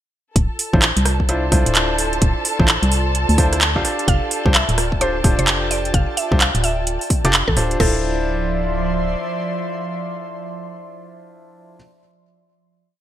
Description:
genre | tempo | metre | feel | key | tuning
UK garage, two-step garage | 129 BPM | 4/4 | swing 62% on 16ths | D minor | A4 = 441 Hz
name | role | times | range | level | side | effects
dark studio violin section | sustained chords | 0.4-7.8 s | A4 to A5 | -28 LUFS | right 1 dB | sidechain pumping
organ-like FM bass | bass | 0.4-9.2 s | D1 to D2 | -20 LUFS | equal | sidechain pumping
electronic kick drum | drums | 0.4-7.9 s | none | -18 LUFS | equal | none
house drum kit | drums | 0.4-7.9 s | crash cymbal, handclaps, hi-hat, rim click | -19 LUFS | right 1 dB | gated reverb
airy breathy pad | texture | 0.4-12.0 s | F3 to C6 | -27 LUFS | right 1 dB | chorus, sidechain pumping
bright grand piano | stabs | 0.7-11.8 s | D4 to F5 | -24 LUFS | equal | low-pass filter, digital delay
mallet-like synth pluck | melody | 4.1-11.8 s | A4 to F5 | -25 LUFS | equal | chorus, ping-pong delay
room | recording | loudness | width
light reverb | bright 1980s-style digital production | -16 LUFS | side -12 dB against mid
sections
0.4-7.8 groove; 7.8-11.5 final chord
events
none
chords
0.4 Dm9; 3.8 F69; 7.8 Dm9

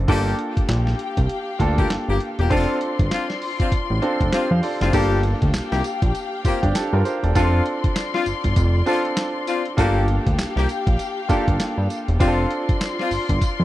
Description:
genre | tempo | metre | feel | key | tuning
R&B, new jack swing | 99 BPM | 4/4 | swing 60% on 16ths | G minor | A4 = 439 Hz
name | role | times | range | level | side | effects
clear concert grand piano | accompaniment | 0.0-13.6 s | Bb3 to F5 | -25 LUFS | right 2 dB | none
fat analog bass | bass | 0.0-13.6 s | E1 to G2 | -20 LUFS | equal | none
dark studio string section | sustained chords | 0.1-13.6 s | F4 to C6 | -29 LUFS | left 3 dB | none
clear horn section | stabs | 0.1-13.1 s | Bb3 to G4 | -25 LUFS | left 6 dB | tape echo
dusty soul sampler-style drum kit | drums | 0.1-13.6 s | crash cymbal, handclaps, hi-hat, kick drum, snare drum, tambourine | -23 LUFS | equal | none
room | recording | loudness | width
little or no reverb | dry, close 1970s-style studio recording | -18 LUFS | side -15 dB against mid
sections
0.0-4.9 A section; 4.9-13.6 B section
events
none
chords
0.1 Gm7; 2.5 Dm7/F; 4.9 Gm7; 7.4 Dm7/F; 9.8 Gm7; 12.2 Dm7/F

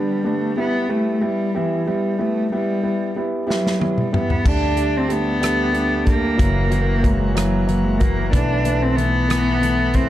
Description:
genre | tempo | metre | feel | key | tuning
six-eight pop ballad | 62 BPM (dotted quarters) | 6/8 | straight | unclear | A4 = 442 Hz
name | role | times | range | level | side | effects
warm cello | melody | 0.0-10.1 s | E3 to D4 | -21 LUFS | equal | none
felt-muted upright piano | accompaniment | 0.0-10.1 s | D3 to E4 | -22 LUFS | right 1 dB | none
natural country drum kit | drums | 3.5-10.1 s | crash cymbal, hi-hat, kick drum, rim click, snare drum, toms | -21 LUFS | equal | none
pipe organ, sparkling flutes | sustained chords | 4.4-10.1 s | E4 to A5 | -31 LUFS | equal | none
upright bass | bass | 4.5-10.1 s | F#1 to D2 | -22 LUFS | equal | none
room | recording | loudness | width
light reverb, small room ambience | dark, warm production | -17 LUFS | side -13 dB against mid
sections
0.0-4.5 A section; 4.5-10.1 B section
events
drum fill 3.5-4.5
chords
0.0 G/D; 0.6 Em; 4.5 Dsus4; 6.4 F#7; 8.3 B7sus4

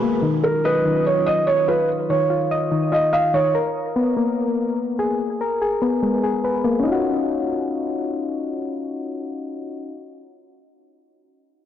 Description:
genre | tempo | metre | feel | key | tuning
hip hop | 145 BPM | 4/4 | half-time | Eb minor | A4 = 440 Hz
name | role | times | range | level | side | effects
warbly tape-like pad | sustained chords | 0.0-1.9 s | Cb3 to Gb4 | -29 LUFS | right 1 dB | chorus, built-in reverb, low-pass filter
soft electric-piano-like synth keys | arpeggios | 0.0-10.0 s | Eb3 to Eb5 | -21 LUFS | left 3 dB | chorus, low-pass filter, digital delay
felt-muted upright piano | melody | 0.4-3.5 s | Bb4 to F5 | -20 LUFS | right 2 dB | low-pass filter, digital delay
room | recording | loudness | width
light reverb | blown-out, overdriven recording, overdrive, nothing above 10.6 kHz | -18 LUFS | side -10 dB against mid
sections
0.0-6.9 A section; 6.9-10.2 B section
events
filter sweep 0.0-6.9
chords
0.2 Ebm9; 3.5 Abmadd9; 6.9 Ebm9

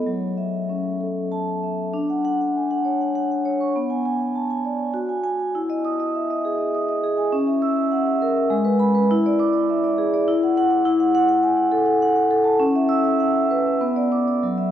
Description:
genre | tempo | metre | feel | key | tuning
classical, contemporary piece for solo vibraphone | 101 BPM | 3/4 | straight | F# minor | A4 = 439 Hz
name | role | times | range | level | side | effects
vibraphone with medium mallets | solo | 0.0-14.7 s | F#3 to E6 | -18 LUFS | equal | none
room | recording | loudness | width
wet cathedral reverb, RT60 6.0 s | worn, warbling old tape, cassette tape, warbly pitch drift | -18 LUFS | side -10 dB against mid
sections
0.0-1.9 A section; 1.9-14.7 B section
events
none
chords
0.1 F#m7; 1.9 Dmaj7#11; 3.8 Bm6; 5.0 F#sus2; 5.6 Emaj7; 7.3 C#m6; 8.5 G#m; 9.1 E7; 10.3 Esus2; 10.9 A5/E; 12.6 C#m7; 13.8 Bm

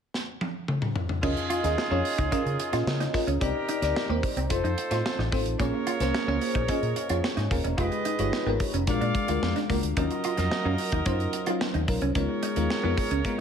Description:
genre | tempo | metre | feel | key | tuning
polished 1980s jazz-funk pop | 110 BPM | 4/4 | straight | Db major | A4 = 441 Hz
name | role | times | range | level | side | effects
modern studio drum kit | drums | 0.1-13.4 s | crash cymbal, hi-hat, kick drum, snare drum, toms | -31 LUFS | equal | gated reverb
clear horn section | second line | 1.2-13.4 s | Eb4 to F5 | -32 LUFS | right 3 dB | tape echo
bell-like FM electric piano | accompaniment | 1.2-13.4 s | Gb3 to Eb5 | -29 LUFS | left 2 dB | phaser, lush chorus
mellow electric guitar | riff | 1.2-13.2 s | Bb3 to F4 | -32 LUFS | right 3 dB | analog chorus
vintage muted fingered electric bass | bass | 1.2-13.3 s | Eb1 to Db3 | -29 LUFS | equal | none
room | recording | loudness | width
small room ambience | none | -24 LUFS | side -7 dB against mid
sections
0.0-1.2 A section; 1.2-13.4 B section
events
drum fill 0.1-1.2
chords
0.0 N.C.; 1.2 Db69; 3.4 Cm9; 4.5 F7; 5.6 Bbm7; 7.8 Fm7b5; 8.9 Bb7b13; 10.0 Ebm7; 12.2 Db13

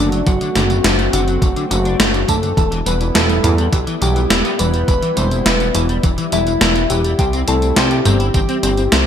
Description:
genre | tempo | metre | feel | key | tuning
synthwave | 104 BPM | 4/4 | straight | unclear | A4 = 440 Hz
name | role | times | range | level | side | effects
soft octave-layered synth lead | melody | 0.0-9.1 s | D4 to C5 | -21 LUFS | left 2 dB | chorus, ping-pong delay
soft synth bell | second line | 0.0-9.1 s | D5 to C6 | -28 LUFS | left 2 dB | chorus, phaser, ping-pong delay
warm analog pad | sustained chords | 0.0-9.1 s | G3 to F#4 | -24 LUFS | right 1 dB | chorus, sidechain pumping
soft round pluck | arpeggios | 0.0-9.1 s | E3 to A4 | -26 LUFS | left 3 dB | none
electric guitar at the edge of break-up | riff | 0.0-9.0 s | D3 to C5 | -24 LUFS | left 3 dB | ensemble chorus, ping-pong delay
chorused synth bass | bass | 0.0-9.0 s | E1 to E2 | -18 LUFS | equal | tube saturation, sidechain pumping
gated 80s digital drum machine | drums | 0.1-9.0 s | hi-hat, snare drum, tambourine, toms | -18 LUFS | right 1 dB | gated reverb, gated reverb snare
electronic kick drum | drums | 0.3-8.5 s | none | -17 LUFS | equal | overdrive
room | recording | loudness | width
light reverb | bright 1980s-style digital production | -13 LUFS | side -8 dB against mid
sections
0.0-9.1 A section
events
none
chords
0.0 D/F#; 2.6 Em; 7.2 C

